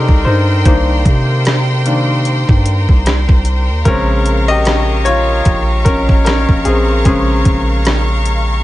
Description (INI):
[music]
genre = contemporary R&B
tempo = 75 BPM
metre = 4/4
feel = swing 58% on 16ths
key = Bb dorian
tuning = A4 = 435 Hz
[part]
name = bright baby grand piano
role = accompaniment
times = 0.0-8.6 s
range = Db3 to Eb5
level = -16 LUFS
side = left 2 dB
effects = none
[part]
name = clear symphonic string section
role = sustained chords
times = 0.0-8.6 s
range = Bb4 to Db6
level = -21 LUFS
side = left 1 dB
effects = none
[part]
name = long sustained 808-style bass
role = bass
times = 0.0-8.6 s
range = Bb1 to C3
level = -14 LUFS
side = equal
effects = none
[part]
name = detuned 8-bit digital drum machine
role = drums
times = 0.1-8.5 s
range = hi-hat, kick drum, rim click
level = -13 LUFS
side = equal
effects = overdrive
[sound]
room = little or no reverb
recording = nothing above 10.5 kHz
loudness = -10 LUFS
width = side -16 dB against mid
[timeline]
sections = 0.0-8.6 A section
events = grand piano solo 0.0-8.6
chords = 0.0 Cm7; 3.9 Bbm7